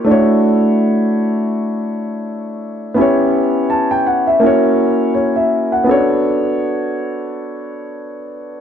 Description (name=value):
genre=hip hop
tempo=83 BPM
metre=4/4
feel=swing 58% on 16ths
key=B minor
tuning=A4 = 440 Hz
part: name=dark baby grand piano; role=solo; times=0.0-8.6 s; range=A3 to A5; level=-14 LUFS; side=equal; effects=none
room=light reverb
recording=none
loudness=-13 LUFS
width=side -8 dB against mid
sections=0.0-8.6 A section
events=none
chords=0.1 Dmaj9; 3.0 C#m7b5; 4.4 F#7; 5.9 Bm7